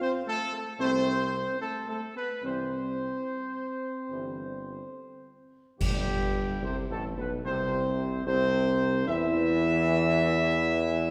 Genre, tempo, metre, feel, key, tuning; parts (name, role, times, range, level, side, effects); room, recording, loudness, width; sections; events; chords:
classical, ceremonial fanfare; 73 BPM; 4/4; straight; C major; A4 = 439 Hz
dark trumpet section; melody; 0.0-11.1 s; G4 to E5; -33 LUFS; equal
dark French horn section; sustained chords; 0.0-11.1 s; G3 to E4; -34 LUFS; equal
warm trombone section; sustained chords; 0.8-11.1 s; G2 to A3; -39 LUFS; equal
mellow tuba; bass; 0.8-11.1 s; G1 to E2; -34 LUFS; equal
clash cymbals and concert bass drum; percussion; 5.8-7.4 s; -36 LUFS; equal
wet scoring stage reverb, RT60 1.8 s; -29 LUFS; mono
0.0-5.8 A section; 5.8-11.1 A section
band accent 5.8-6.6
0.0 F (rootless); 2.4 C; 5.8 C/G